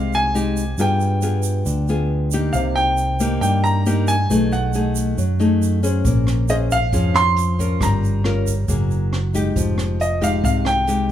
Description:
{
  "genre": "bossa nova",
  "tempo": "137 BPM",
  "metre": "4/4",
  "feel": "straight",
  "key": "F minor",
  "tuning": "A4 = 440 Hz",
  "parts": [
    { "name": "clear grand piano", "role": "melody", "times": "0.0-11.1 s", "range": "Eb5 to C6", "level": "-22 LUFS", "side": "right 1 dB", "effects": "none" },
    { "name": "nylon-string guitar", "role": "accompaniment", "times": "0.0-11.1 s", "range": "B2 to C5", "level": "-22 LUFS", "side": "left 3 dB", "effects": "none" },
    { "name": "fingered electric bass", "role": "bass", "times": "0.0-11.1 s", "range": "F1 to G2", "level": "-20 LUFS", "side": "right 1 dB", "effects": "none" },
    { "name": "egg shaker", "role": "percussion", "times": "0.1-11.1 s", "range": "none", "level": "-33 LUFS", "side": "right 9 dB", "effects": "none" },
    { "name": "jazz brush drum kit", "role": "drums", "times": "6.0-11.1 s", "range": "hi-hat, kick drum, rim click", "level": "-25 LUFS", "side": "left 1 dB", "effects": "none" }
  ],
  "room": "light reverb",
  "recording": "band playing live in one room",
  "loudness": "-17 LUFS",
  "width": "side -11 dB against mid",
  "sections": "0.0-11.1 A section",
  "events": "none",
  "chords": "0.0 Fm9 (rootless); 0.8 G7b9; 2.5 Cm7; 4.3 B13; 6.1 Bbm9; 7.8 Gm7b5; 8.7 Gb9; 9.6 Fm9"
}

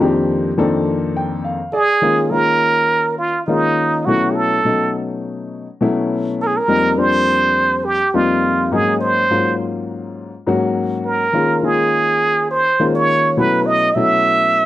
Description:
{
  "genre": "jazz",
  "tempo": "103 BPM",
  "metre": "4/4",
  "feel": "straight",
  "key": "Eb dorian",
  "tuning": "A4 = 441 Hz",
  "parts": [
    { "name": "warm grand piano", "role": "accompaniment", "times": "0.0-14.7 s", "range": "F2 to G5", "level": "-18 LUFS", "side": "left 3 dB", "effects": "none" },
    { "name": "trumpet with plunger mute", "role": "melody", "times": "1.7-14.7 s", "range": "Eb4 to E5", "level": "-15 LUFS", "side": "right 2 dB", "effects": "none" }
  ],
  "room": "light reverb",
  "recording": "dry, close 1970s-style studio recording",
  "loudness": "-14 LUFS",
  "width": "side -14 dB against mid",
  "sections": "0.0-2.0 A section; 2.0-14.7 B section",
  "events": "grand piano fill 0.9-2.0",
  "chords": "0.0 F13sus4; 2.0 Eb9sus4; 4.1 B9sus4; 6.7 F9sus4; 8.7 Ab9sus4; 11.3 Eb9sus4; 13.4 B9sus4"
}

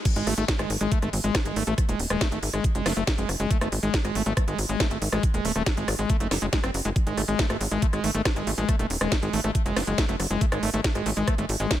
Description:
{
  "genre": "psychedelic trance",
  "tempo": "139 BPM",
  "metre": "4/4",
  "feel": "straight",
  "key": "unclear",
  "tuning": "A4 = 440 Hz",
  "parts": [
    { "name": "electronic kick drum", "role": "drums", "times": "0.1-11.8 s", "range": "none", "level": "-25 LUFS", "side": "equal", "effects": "overdrive" },
    { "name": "techno drum kit", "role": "drums", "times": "0.1-11.8 s", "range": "crash cymbal, hi-hat, rim click, snare drum", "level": "-29 LUFS", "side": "equal", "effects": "none" },
    { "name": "screaming distorted acid line", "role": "riff", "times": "0.2-11.7 s", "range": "G#3 to B#3", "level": "-28 LUFS", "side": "moving between left 4 dB and right 2 dB", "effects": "distortion, chorus, auto-pan, sidechain pumping, ping-pong delay" },
    { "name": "tight sequencer bass", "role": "bass", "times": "0.2-11.7 s", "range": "D#1 to A1", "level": "-28 LUFS", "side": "equal", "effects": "tube saturation, high-pass filter" }
  ],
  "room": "digital ambience",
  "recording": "none",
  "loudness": "-22 LUFS",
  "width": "side -12 dB against mid",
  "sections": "0.1-11.8 A section",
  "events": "drop 0.1-11.8",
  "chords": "0.1 G#5"
}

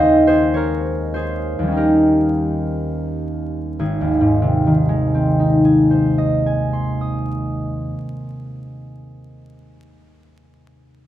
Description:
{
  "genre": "classical, solo harp piece",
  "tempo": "28-36 BPM (dotted quarters)",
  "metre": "6/8",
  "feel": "rubato",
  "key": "Ab major",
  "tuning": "A4 = 441 Hz",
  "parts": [
    { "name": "concert harp", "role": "solo", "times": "0.0-9.2 s", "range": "Ab1 to Eb6", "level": "-16 LUFS", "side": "equal", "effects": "none" }
  ],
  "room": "light reverb",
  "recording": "close, detailed microphones, vinyl crackle",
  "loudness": "-16 LUFS",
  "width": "side -12 dB against mid",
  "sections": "0.0-3.8 A section; 3.8-7.7 B section",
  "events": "slowing down 0.0-3.8",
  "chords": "0.0 Ab/Eb; 1.8 Eb7; 3.8 Ab"
}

